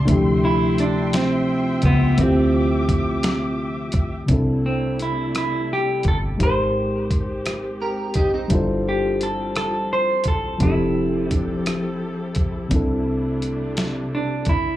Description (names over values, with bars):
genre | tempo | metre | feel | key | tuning
slow six-eight R&B | 57 BPM (dotted quarters) | 6/8 | straight | C major | A4 = 440 Hz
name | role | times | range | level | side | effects
mellow reed electric piano | accompaniment | 0.0-14.8 s | C3 to C5 | -23 LUFS | left 1 dB | plate reverb, slapback echo
dark studio string section | sustained chords | 0.0-14.8 s | C3 to D6 | -31 LUFS | equal | plate reverb
fingered electric bass | bass | 0.0-14.8 s | E1 to D2 | -25 LUFS | equal | none
dusty soul sampler-style drum kit | drums | 0.1-14.6 s | hi-hat, kick drum, rim click, snare drum | -22 LUFS | equal | none
semi-hollow electric guitar | melody | 0.4-14.8 s | B3 to C5 | -23 LUFS | right 2 dB | plate reverb, slapback echo
clean electric guitar | second line | 7.8-8.7 s | C4 to Bb4 | -24 LUFS | right 1 dB | analog chorus, plate reverb
room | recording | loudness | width
moderate club ambience, RT60 0.5 s | live gig heard through the venue's PA, club reverb | -18 LUFS | side -13 dB against mid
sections
0.0-4.3 A section; 4.3-14.8 B section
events
clean electric guitar solo 4.3-14.8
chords
0.1 Dm11; 4.3 C69; 6.4 Abmaj9; 8.5 G13sus4; 10.6 Fmaj9; 12.7 C69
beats
| 0.09 1.14 | 2.19 3.24 | 4.29 5.35 | 6.40 7.45 | 8.51 9.56 | 10.61 11.66 | 12.72 13.77